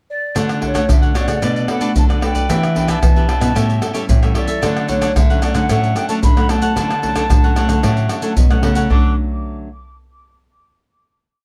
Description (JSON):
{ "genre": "samba and choro", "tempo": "112 BPM", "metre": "4/4", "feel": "straight", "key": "D major", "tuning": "A4 = 440 Hz", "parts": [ { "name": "breathy mellow wooden flute", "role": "melody", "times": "0.1-9.2 s", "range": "C#5 to D6", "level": "-26 LUFS", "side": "equal", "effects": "tape echo" }, { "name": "cavaquinho", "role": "accompaniment", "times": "0.3-9.1 s", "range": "D4 to F#5", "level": "-26 LUFS", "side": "equal", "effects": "none" }, { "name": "nylon-string guitar", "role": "accompaniment", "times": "0.4-9.7 s", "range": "F#2 to G4", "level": "-25 LUFS", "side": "equal", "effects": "none" }, { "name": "nylon-string guitar", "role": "bass", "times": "0.4-9.2 s", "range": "A2 to E3", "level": "-23 LUFS", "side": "equal", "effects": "none" }, { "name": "maracas, surdo, pandeiro and tamborim", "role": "percussion", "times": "0.4-9.0 s", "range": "none", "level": "-19 LUFS", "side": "equal", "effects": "none" } ], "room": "light reverb", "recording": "none", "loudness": "-16 LUFS", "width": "mono", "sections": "0.0-0.4 pickup bar; 0.4-8.9 A section; 8.9-11.0 final chord", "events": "none", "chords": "0.4 Dmaj7; 1.4 Bm7; 2.5 Em7; 3.6 A7; 4.6 Dmaj7" }